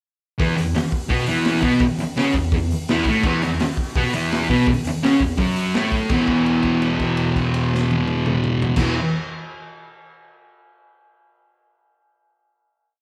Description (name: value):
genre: garage rock duo or trio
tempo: 167 BPM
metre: 4/4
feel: straight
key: unclear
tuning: A4 = 438 Hz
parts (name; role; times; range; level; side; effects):
- thick fuzz guitar; riff; 0.4-9.0 s; E2 to C#4; -21 LUFS; equal; distortion
- crunchy breakbeat drum kit; drums; 0.4-8.9 s; crash cymbal, hi-hat, kick drum, snare drum, toms; -26 LUFS; equal; none
room: wet large studio reverb, RT60 1.3 s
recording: band playing live in one room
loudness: -20 LUFS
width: mono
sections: 0.4-6.1 riff; 6.1-9.0 final chord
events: held note 6.1-8.8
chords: 0.4 E5